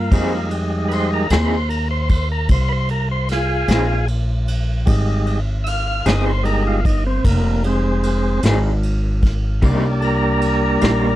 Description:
slow blues; 50 BPM (dotted quarters); 12/8; straight; A4 = 437 Hz
tonewheel organ; sustained chords; 0.0-11.2 s; G3 to F5; -20 LUFS; equal; slow rotary speaker
upright bass; bass; 0.0-11.2 s; F1 to F2; -19 LUFS; equal
electric guitar through a small old amp; accompaniment; 0.1-11.1 s; C3 to Ab4; -22 LUFS; left 1 dB; tremolo
vintage brush drum kit; drums; 0.1-11.0 s; kick drum, ride cymbal, snare drum; -23 LUFS; equal
small room reverb; dry, close 1970s-style studio recording; -16 LUFS; side -14 dB against mid
0.0-11.2 A section
tonewheel organ solo 0.0-11.2
0.1 Fm7; 9.6 Cm7
| 0.12 1.31 2.50 3.69 | 4.88 6.07 7.25 8.45 | 9.64 10.83

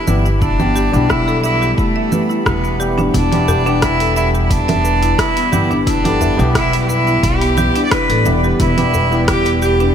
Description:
organic downtempo; 88 BPM; 4/4; straight; E minor pentatonic; A4 = 440 Hz
clear cello; melody; 0.0-9.9 s; A3 to D5; -18 LUFS; right 1 dB; ping-pong delay
overdriven tine electric piano; accompaniment; 0.0-9.9 s; G3 to G4; -22 LUFS; left 3 dB; wide subtle chorus, sidechain pumping, ping-pong delay
warbly tape-like pad; sustained chords; 0.0-9.9 s; E3 to B5; -26 LUFS; equal; chorus, built-in reverb, sidechain pumping
marimba with medium hard mallets; arpeggios; 0.0-9.9 s; B3 to E5; -21 LUFS; left 1 dB; ping-pong delay
upright bass; bass; 0.1-9.9 s; E1 to B1; -18 LUFS; equal; sidechain pumping
deep house drum kit; drums; 0.1-9.9 s; cabasa, congas, hi-hat, rim click; -22 LUFS; right 2 dB; small room reverb
electronic kick drum; drums; 0.4-9.4 s; -20 LUFS; equal; small room reverb
wind-like tuned noise texture; texture; 4.5-9.9 s; B3 to B4; -30 LUFS; right 1 dB
djembe; percussion; 3.5-9.9 s; -24 LUFS; left 2 dB
light reverb, studio ambience; bright 1980s-style digital production; -12 LUFS; side -8 dB against mid
0.0-9.9 A section
0.0 Em
| 0.42 1.10 1.78 2.46 | 3.15 3.83 4.51 5.19 | 5.87 6.55 7.24 7.92 | 8.60 9.28

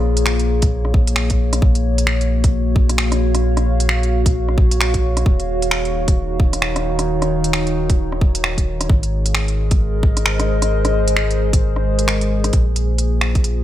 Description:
future garage; 132 BPM; 4/4; swing 60% on 16ths; Bb minor; A4 = 440 Hz
warbly tape-like pad; sustained chords; 0.0-13.6 s; Eb3 to F5; -22 LUFS; left 1 dB; chorus, built-in reverb, sidechain pumping
warm sub bass; bass; 0.0-13.6 s; Eb1 to Bb1; -19 LUFS; equal; tube saturation, sidechain pumping
organic electronic drum kit; drums; 0.2-13.6 s; finger snaps, hi-hat, rim click; -22 LUFS; right 1 dB; small room ambience
electronic kick drum; drums; 0.6-13.4 s; -15 LUFS; equal; small room ambience
light reverb; -15 LUFS; side -12 dB against mid
0.0-12.5 A section; 12.5-13.6 B section
kick drops out 11.6-12.5
0.0 Bbm7; 1.6 Gbmaj7/Bb; 5.3 Ebm7; 8.9 Abadd9; 12.5 Bbm7
0.26 0.71 1.17 | 1.62 2.08 2.53 2.99 | 3.44 3.90 4.35 4.80 | 5.26 5.71 6.17 6.62 | 7.08 7.53 7.99 8.44 | 8.90 9.35 9.80 10.26 | 10.71 11.17 11.62 12.08 | 12.53 12.99 13.44

